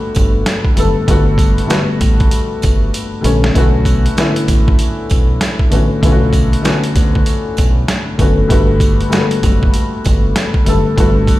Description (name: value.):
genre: hip hop, boom-bap hip-hop.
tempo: 97 BPM.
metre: 4/4.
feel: swing 62% on 16ths.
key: unclear.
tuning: A4 = 441 Hz.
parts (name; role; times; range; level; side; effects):
dark upright piano; accompaniment; 0.0-11.4 s; D3 to A4; -16 LUFS; left 2 dB; cassette tape.
sleigh bells; percussion; 0.1-11.4 s; none; -32 LUFS; right 9 dB; none.
deep dub fingered electric bass; bass; 0.2-11.4 s; F#1 to D2; -16 LUFS; equal; none.
boom bap sampler-style drum kit; drums; 0.2-11.4 s; hi-hat, kick drum, snare drum; -14 LUFS; equal; none.
room: little or no reverb.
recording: played on a big sound system in a bare room, stone room reverb.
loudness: -11 LUFS.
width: side -16 dB against mid.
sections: 0.0-11.4 A section.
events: drum fill 2.9-3.6.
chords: 0.0 Gmaj7; 3.6 Bm7; 8.5 Gmaj7.